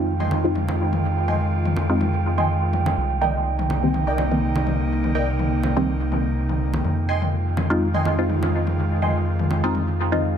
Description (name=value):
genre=dub techno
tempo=124 BPM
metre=4/4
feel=swing 54% on 16ths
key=unclear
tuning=A4 = 440 Hz
part: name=airy breathy pad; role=sustained chords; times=0.0-10.4 s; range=C3 to F4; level=-27 LUFS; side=equal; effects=chorus
part: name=filtered dub chord stab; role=stabs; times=0.0-10.4 s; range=Eb3 to F4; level=-26 LUFS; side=equal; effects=chorus, phaser, dub echo
part: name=round analog bass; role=bass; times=0.0-10.4 s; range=C2 to F2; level=-23 LUFS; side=equal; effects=none
part: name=wind-like tuned noise texture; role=texture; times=0.0-10.4 s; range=G5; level=-31 LUFS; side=right 10 dB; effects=built-in reverb
part: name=filtered dub chord stab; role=riff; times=0.2-9.1 s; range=Bb4 to C6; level=-28 LUFS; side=right 2 dB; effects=phaser, lush chorus, dub echo
part: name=electronic toms and congas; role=percussion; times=0.2-10.2 s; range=none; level=-28 LUFS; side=left 2 dB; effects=overdrive, dub echo
room=light reverb, digital ambience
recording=none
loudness=-19 LUFS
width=side -8 dB against mid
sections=0.0-10.4 A section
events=filter sweep on synth stab 0.0-10.4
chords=0.0 Fm7; 3.0 Cm7; 6.8 Fm7